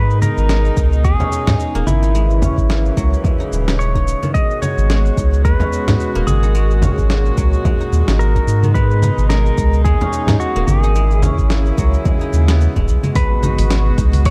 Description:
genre	organic downtempo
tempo	109 BPM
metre	4/4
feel	swing 56% on 16ths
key	G# minor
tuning	A4 = 440 Hz
part	clean lap steel guitar	melody	0.0-14.3 s	E4 to D#5	-26 LUFS	equal	vintage 12-bit sampler grit, digital delay
part	warm chamber string section	sustained chords	0.0-14.3 s	A#2 to F#4	-28 LUFS	equal	sidechain pumping
part	guzheng	arpeggios	0.0-14.3 s	D#3 to D#4	-28 LUFS	equal	digital delay
part	warm sub bass	bass	0.0-14.3 s	D#1 to G#2	-17 LUFS	equal	sidechain pumping
part	dusty soul sampler-style drum kit	drums	0.1-14.3 s	cabasa, congas, hi-hat, snare drum	-25 LUFS	equal	none
part	electronic kick drum	drums	0.8-14.3 s	none	-20 LUFS	equal	overdrive
part	frame drum	percussion	1.2-12.9 s	none	-24 LUFS	equal	none
part	impact	sound effects	13.2-14.3 s	none	-24 LUFS	equal	none
room	little or no reverb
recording	dark, warm production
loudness	-15 LUFS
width	mono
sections	0.0-13.2 A section; 13.2-14.3 B section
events	impact 13.2-14.3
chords	0.0 B6/G#; 2.1 C#m/G#; 4.3 G#m7; 6.5 F#add9/G#; 8.8 B6/G#; 11.0 C#m7/G#; 13.2 G#m7

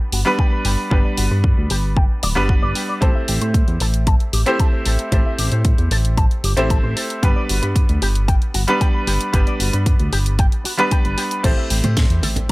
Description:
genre	nu-disco, nu disco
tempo	114 BPM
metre	4/4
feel	straight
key	unclear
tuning	A4 = 441 Hz
part	bright grand piano	accompaniment	0.0-12.5 s	G3 to C5	-22 LUFS	equal	sidechain pumping, tape echo
part	electric guitar with an envelope filter	riff	0.1-12.3 s	F#4 to A5	-28 LUFS	left 2 dB	wide subtle chorus, low-pass filter, tape echo
part	chorused synth bass	bass	0.1-12.5 s	D1 to A2	-19 LUFS	equal	tube saturation
part	house drum kit	drums	0.1-12.5 s	crash cymbal, hi-hat, snare drum	-25 LUFS	equal	none
part	electronic kick drum	drums	0.4-12.5 s	none	-16 LUFS	equal	none
part	congas	percussion	11.8-12.5 s	none	-24 LUFS	right 2 dB	none
room	little or no reverb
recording	none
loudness	-15 LUFS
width	side -21 dB against mid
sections	0.0-12.5 A section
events	filter sweep on clean electric guitar 0.0-12.5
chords	0.0 G; 3.0 Am7; 7.2 G; 11.4 Am7

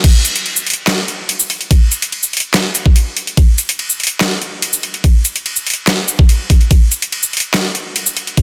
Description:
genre	dubstep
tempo	144 BPM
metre	4/4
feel	half-time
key	none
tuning	none
part	dubstep drum kit	drums	0.0-8.4 s	crash cymbal, handclaps, hi-hat, ride cymbal, shaker, snare drum	-17 LUFS	equal	overdrive
part	electronic kick drum	drums	0.0-8.4 s	none	-11 LUFS	equal	overdrive
room	digital ambience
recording	dense, heavily limited modern master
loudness	-14 LUFS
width	mono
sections	0.0-8.4 A section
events	drop 0.0-8.4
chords	none

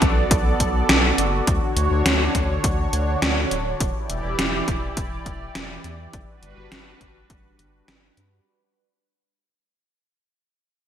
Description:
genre	synthwave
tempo	103 BPM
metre	4/4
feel	straight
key	unclear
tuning	A4 = 441 Hz
part	lush unison pad	sustained chords	0.0-8.4 s	D3 to D5	-25 LUFS	right 1 dB	chorus, phaser, sidechain pumping
part	round analog bass	bass	0.0-8.4 s	D1 to G2	-25 LUFS	equal	sidechain pumping
part	electronic kick drum	drums	0.0-7.4 s	none	-23 LUFS	equal	overdrive
part	gated 80s digital drum machine	drums	0.0-8.3 s	hi-hat, snare drum	-22 LUFS	equal	gated reverb, gated reverb snare, overdrive
room	moderate lush hall reverb, RT60 1.8 s, digital ambience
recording	bright 1980s-style digital production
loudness	-19 LUFS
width	side -9 dB against mid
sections	0.0-8.5 A section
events	fade-out 0.0-8.5; filter sweep on analog synth bass 0.0-8.5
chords	0.0 Bm7; 1.5 Dmaj7; 3.8 Em7; 6.1 Gmaj7

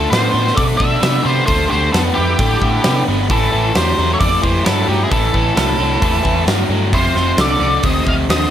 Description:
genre	blues rock power trio and southern rock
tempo	132 BPM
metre	4/4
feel	straight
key	A minor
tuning	A4 = 442 Hz
part	octave-fuzz lead guitar	melody	0.0-8.5 s	G4 to F5	-19 LUFS	equal	distortion
part	biting lead guitar	second line	0.0-8.5 s	D#4 to Eb5	-26 LUFS	right 2 dB	overdrive, tape echo
part	biting overdriven guitar	riff	0.0-8.5 s	F2 to B3	-18 LUFS	left 1 dB	none
part	overdriven picked electric bass	bass	0.0-8.4 s	F1 to C3	-19 LUFS	equal	none
part	huge arena drum kit	drums	0.1-8.4 s	hi-hat, kick drum, snare drum	-19 LUFS	equal	none
room	light reverb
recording	none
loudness	-13 LUFS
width	side -10 dB against mid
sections	0.0-8.5 A section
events	none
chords	0.0 Dm9; 3.3 A7(no3); 6.9 F7

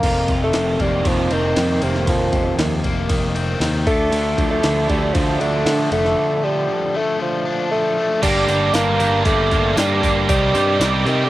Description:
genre	indie rock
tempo	117 BPM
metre	4/4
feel	straight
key	unclear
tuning	A4 = 439 Hz
part	clear bassoon	melody	0.0-11.3 s	C3 to Bb3	-20 LUFS	equal	cassette tape
part	cranked stack guitar	riff	0.0-11.3 s	F2 to G4	-22 LUFS	right 5 dB	overdrive, ensemble chorus, cassette tape
part	crunchy overdriven guitar	riff	0.0-11.3 s	F2 to Eb4	-24 LUFS	left 4 dB	cassette tape
part	modern bright picked electric bass	bass	0.0-11.3 s	F1 to D3	-22 LUFS	equal	none
part	jungle sampler-style drum kit	drums	0.0-11.2 s	crash cymbal, hi-hat, kick drum, ride cymbal, snare drum	-23 LUFS	equal	cassette tape
part	tambourine	percussion	8.2-10.9 s	none	-35 LUFS	left 8 dB	none
room	light reverb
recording	home recording on cassette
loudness	-16 LUFS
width	side -16 dB against mid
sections	0.0-8.2 A section; 8.2-11.3 B section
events	break 6.2-8.2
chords	0.0 F7sus4; 3.9 Dm; 8.2 Gm; 10.3 Cm

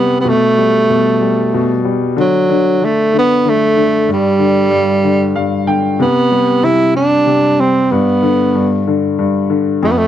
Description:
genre	six-eight pop ballad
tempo	63 BPM (dotted quarters)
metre	6/8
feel	straight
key	unclear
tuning	A4 = 440 Hz
part	breathy tenor saxophone	melody	0.0-10.1 s	F#3 to E4	-12 LUFS	right 2 dB	none
part	bright upright piano	accompaniment	0.0-10.1 s	F2 to G5	-15 LUFS	left 4 dB	none
room	moderate booth ambience, RT60 0.2 s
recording	dry, close 1970s-style studio recording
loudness	-11 LUFS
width	side -10 dB against mid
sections	0.0-10.1 A section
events	upright piano fill 5.0-6.0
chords	0.3 Gadd9/B; 2.2 N.C.; 4.1 G5; 6.0 C5; 7.9 G

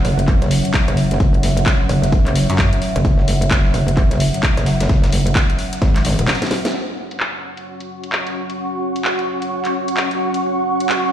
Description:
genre	bass house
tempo	130 BPM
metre	4/4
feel	swing 61% on 16ths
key	unclear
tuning	A4 = 440 Hz
part	dark analog pad	sustained chords	0.0-11.1 s	F#3 to F#5	-25 LUFS	equal	chorus, sidechain pumping
part	metallic wobble bass	bass	0.0-6.3 s	E1 to F#2	-17 LUFS	equal	chorus, tube saturation, sidechain pumping
part	dusty soul sampler-style drum kit	drums	0.0-6.6 s	hi-hat, snare drum	-33 LUFS	equal	overdrive, high-pass filter on snare, sidechain pumping on hats, high-pass filter on hats, high-pass filter on room
part	house drum kit	drums	0.0-11.0 s	handclaps, hi-hat, snare drum	-23 LUFS	left 1 dB	low-pass filter on hats, low-pass filter on snare, low-pass filter on room
part	ethereal airy pad	texture	0.0-11.1 s	C#4 to C#6	-24 LUFS	right 1 dB	ensemble chorus, built-in reverb, sidechain pumping
part	electronic kick drum	drums	0.3-5.9 s	none	-16 LUFS	equal	overdrive
room	light reverb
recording	played on a big sound system in a bare room, stone room reverb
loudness	-15 LUFS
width	side -10 dB against mid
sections	0.0-6.7 A section; 6.7-11.1 B section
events	drum fill 6.3-6.7; band accent 6.6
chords	0.0 F#5

